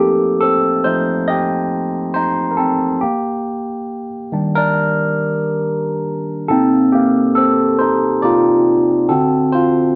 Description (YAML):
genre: R&B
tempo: 69 BPM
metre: 4/4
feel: swing 55% on 16ths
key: unclear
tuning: A4 = 440 Hz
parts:
  - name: barky tine electric piano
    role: solo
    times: 0.0-10.0 s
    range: C3 to Eb5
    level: -16 LUFS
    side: equal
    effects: overdrive, phaser
room: moderate studio reverb, RT60 0.6 s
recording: band playing live in one room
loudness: -16 LUFS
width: mono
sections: 0.0-10.0 A section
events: tine electric piano solo 0.0-10.0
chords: 0.0 F9; 3.0 Ebmaj7; 6.5 Cm11; 9.1 D7